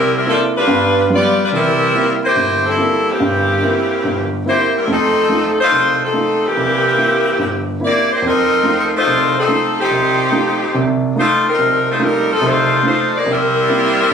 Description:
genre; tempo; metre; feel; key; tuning
jazz; 143 BPM; 4/4; swing 68% on 8ths; unclear; A4 = 438 Hz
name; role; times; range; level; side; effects
edgy saxophone section; melody; 0.0-14.1 s; E3 to D5; -14 LUFS; left 1 dB; none
warm grand piano; accompaniment; 0.0-14.1 s; G1 to F4; -18 LUFS; right 2 dB; none
room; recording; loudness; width
moderate large studio reverb, RT60 1.1 s; recorded on a phone in the room, club reverb; -13 LUFS; side -7 dB against mid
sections
0.0-1.5 A section; 1.5-14.1 B section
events
none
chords
0.0 C7; 0.7 G7; 1.5 C7; 4.9 F7; 6.6 C7; 8.2 F7; 13.3 C7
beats
0.26 0.68 1.10 | 1.52 1.94 2.36 2.77 | 3.19 3.62 4.04 4.46 | 4.88 5.29 5.71 6.13 | 6.55 6.97 7.39 7.81 | 8.23 8.65 9.07 9.49 | 9.91 10.33 10.75 11.17 | 11.59 12.01 12.43 12.85 | 13.27 13.69 14.11

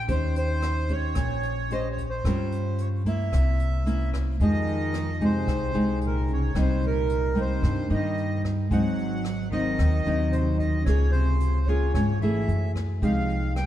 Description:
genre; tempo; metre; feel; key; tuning
bossa nova; 111 BPM; 4/4; straight; F minor; A4 = 440 Hz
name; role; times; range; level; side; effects
accordion; melody; 0.0-13.7 s; Bb4 to G5; -32 LUFS; right 2 dB; none
nylon-string guitar; accompaniment; 0.0-13.7 s; G2 to C5; -27 LUFS; left 1 dB; none
upright bass; bass; 0.0-13.7 s; Ab1 to G2; -26 LUFS; equal; none
jazz brush drum kit; drums; 0.1-13.7 s; hi-hat, kick drum, rim click; -32 LUFS; equal; none
warm cello; second line; 4.4-13.7 s; Bb2 to G3; -34 LUFS; right 3 dB; none
room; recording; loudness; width
light reverb; heard from further back in the room; -22 LUFS; side -12 dB against mid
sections
0.0-4.4 A section; 4.4-13.7 B section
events
none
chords
0.0 Eb13; 2.2 Gm7b5; 3.3 C7b9; 4.4 Fm9; 6.5 Cm7; 8.7 Ab7; 10.9 Db6; 12.5 Gbm9; 13.0 Fm9/C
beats
| 0.09 0.63 1.17 1.70 | 2.24 2.78 3.32 3.86 | 4.39 4.93 5.47 6.01 | 6.55 7.09 7.63 8.17 | 8.71 9.25 9.79 10.32 | 10.86 11.40 11.94 12.48 | 13.02 13.56

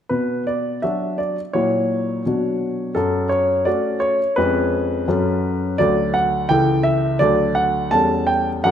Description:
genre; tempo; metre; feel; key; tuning
classical-period piano sonatina; 85 BPM; 2/4; rubato; B minor; A4 = 439 Hz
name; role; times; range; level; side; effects
warm grand piano; solo; 0.1-8.7 s; C#2 to A5; -17 LUFS; equal; none
room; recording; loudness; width
wet recital hall reverb, RT60 1.7 s; none; -17 LUFS; side -9 dB against mid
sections
0.1-8.7 A section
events
none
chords
0.1 Bm; 1.6 F#7/A#; 2.3 Bm; 3.0 F#m; 4.4 C#7/E#; 5.1 F#m; 5.8 D; 6.5 A7/C#; 7.2 D; 7.9 A7/E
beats
| 0.12 0.84 | 1.55 2.26 | 2.96 3.67 | 4.38 5.09 | 5.80 6.50 | 7.21 7.92 | 8.65

